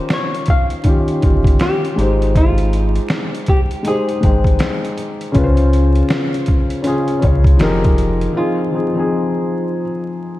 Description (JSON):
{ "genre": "lo-fi hip hop", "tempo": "80 BPM", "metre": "4/4", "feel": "swing 63% on 16ths", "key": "F minor", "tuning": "A4 = 437 Hz", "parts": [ { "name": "archtop guitar, miked and amplified", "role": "melody", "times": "0.0-10.4 s", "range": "F4 to F5", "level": "-23 LUFS", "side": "equal", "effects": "low-pass filter, analog delay" }, { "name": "felt-muted upright piano", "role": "accompaniment", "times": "0.0-10.4 s", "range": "Db3 to G5", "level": "-18 LUFS", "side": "left 2 dB", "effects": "cassette tape, low-pass filter" }, { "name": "trip hop sampler-style drum kit", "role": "drums", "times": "0.1-8.3 s", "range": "hi-hat, kick drum, snare drum", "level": "-16 LUFS", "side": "equal", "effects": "none" }, { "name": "finger snap", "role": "percussion", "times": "0.1-7.8 s", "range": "none", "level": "barely audible", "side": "none", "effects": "none" }, { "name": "warm sub bass", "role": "bass", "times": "1.2-8.3 s", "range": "F1 to Db2", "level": "-16 LUFS", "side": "equal", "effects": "none" } ], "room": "light reverb, digital ambience", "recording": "vinyl crackle", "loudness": "-13 LUFS", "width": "side -16 dB against mid", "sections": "0.0-8.4 A section; 8.4-10.4 B section", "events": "none", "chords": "0.0 Eb9; 2.0 Abmaj7; 5.4 Dbmaj7; 7.6 Fm11; 8.4 Fm7" }